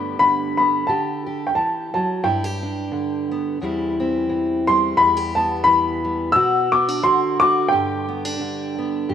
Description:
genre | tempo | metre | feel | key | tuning
folk | 88 BPM | 4/4 | swing 56% on 8ths | G major | A4 = 440 Hz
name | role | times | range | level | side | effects
warm upright piano | melody | 0.0-9.1 s | G5 to E6 | -18 LUFS | left 1 dB | none
fingerpicked steel-string acoustic guitar | accompaniment | 0.0-9.1 s | E2 to G4 | -22 LUFS | equal | none
room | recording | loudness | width
moderate lush hall reverb, RT60 2.7 s | rough home demo mix | -18 LUFS | side -9 dB against mid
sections
0.0-9.1 A section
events
none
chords
0.0 G; 0.9 Dsus4; 2.2 G; 3.6 C/E; 5.0 Em; 6.3 Bm; 7.0 D7; 7.7 G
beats
0.20 0.88 1.56 | 2.24 2.93 3.61 4.29 | 4.98 5.66 6.34 7.03 | 7.71 8.39 9.07

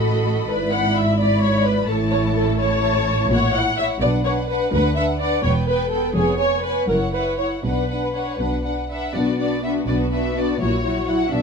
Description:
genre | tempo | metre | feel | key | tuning
quick classical-period movement for string orchestra | 84 BPM (dotted quarters) | 6/8 | rubato | A major, B minor from 3.3 s | A4 = 441 Hz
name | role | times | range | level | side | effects
warm studio violin section | melody | 0.0-11.4 s | B4 to B5 | -29 LUFS | left 4 dB | none
warm studio violin section | second line | 0.0-11.4 s | B3 to D#5 | -26 LUFS | left 1 dB | none
warm studio viola section | accompaniment | 0.0-11.4 s | F#3 to F#5 | -22 LUFS | left 1 dB | none
warm studio cello section | bass | 0.0-11.4 s | D2 to B2 | -25 LUFS | right 1 dB | none
warm studio double bass section | bass | 0.0-11.4 s | E1 to D2 | -25 LUFS | right 2 dB | none
room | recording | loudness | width
moderate studio reverb, RT60 0.8 s | dark, warm production | -18 LUFS | side -5 dB against mid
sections
0.0-9.1 A section; 9.1-11.4 B section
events
none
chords
0.5 E7/G#; 1.9 A; 3.3 F#7/A#; 4.0 Bm; 4.7 Bm/D; 5.4 Em; 6.2 C#7/E#; 6.9 F#5; 7.6 Bm; 10.6 F#7/A#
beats
| 0.50 1.20 | 1.90 2.60 | 3.31 4.02 | 4.73 5.44 | 6.16 6.89 | 7.65 8.39 | 9.15 9.88 | 10.60 11.32

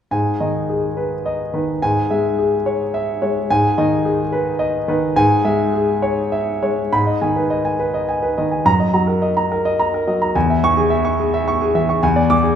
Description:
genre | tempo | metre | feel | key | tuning
classical, virtuoso piano study | 71 BPM (dotted quarters) | 6/8 | rubato | G# minor | A4 = 439 Hz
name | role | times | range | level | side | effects
warm concert grand piano | solo | 0.1-12.6 s | E2 to D6 | -16 LUFS | equal | none
room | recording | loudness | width
moderate recital hall reverb, RT60 1.3 s | minimal, uncompressed stereo recording | -16 LUFS | side -8 dB against mid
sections
0.1-6.9 A section; 6.9-12.6 B section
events
none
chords
0.1 G#m; 1.8 C#m/G#; 3.5 G#m; 5.2 C#m/G#; 6.9 G#m; 8.7 D#m/F#; 10.3 C#m/E; 12.0 E7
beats
| 0.11 0.97 | 1.81 2.65 | 3.49 4.32 | 5.16 6.02 | 6.93 7.79 | 8.65 9.51 | 10.35 11.19 | 12.02

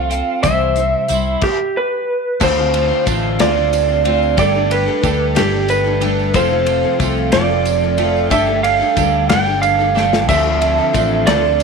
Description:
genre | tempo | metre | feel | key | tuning
folk rock and heartland rock | 61 BPM (dotted quarters) | 6/8 | straight | D dorian | A4 = 440 Hz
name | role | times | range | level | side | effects
electric slide guitar | melody | 0.0-11.6 s | G4 to G5 | -16 LUFS | right 3 dB | none
picked steel-string acoustic guitar | accompaniment | 0.0-11.6 s | C3 to C5 | -21 LUFS | left 12 dB | none
twelve-string electric guitar | riff | 0.0-11.6 s | F2 to A4 | -22 LUFS | right 12 dB | analog chorus
fingered electric bass | bass | 0.0-11.6 s | F1 to D2 | -21 LUFS | left 1 dB | none
natural country drum kit | drums | 0.1-11.6 s | crash cymbal, hi-hat, kick drum, ride cymbal, snare drum | -22 LUFS | left 5 dB | none
tambourine | percussion | 0.4-11.6 s | none | -35 LUFS | right 14 dB | none
room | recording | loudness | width
moderate echo chamber reverb, RT60 1.6 s, small room ambience | 1960s-style stereo with parts hard left and right | -13 LUFS | side -5 dB against mid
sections
0.0-2.4 A section; 2.4-11.6 B section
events
stop 1.4-2.4; drum fill 10.0-10.3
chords
0.4 C; 2.4 Dm7; 4.4 Gsus2; 6.3 F; 8.3 Gsus2; 10.3 Dm7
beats
| 0.44 1.43 | 2.41 3.40 | 4.38 5.36 | 6.35 7.33 | 8.32 9.30 | 10.29 11.28

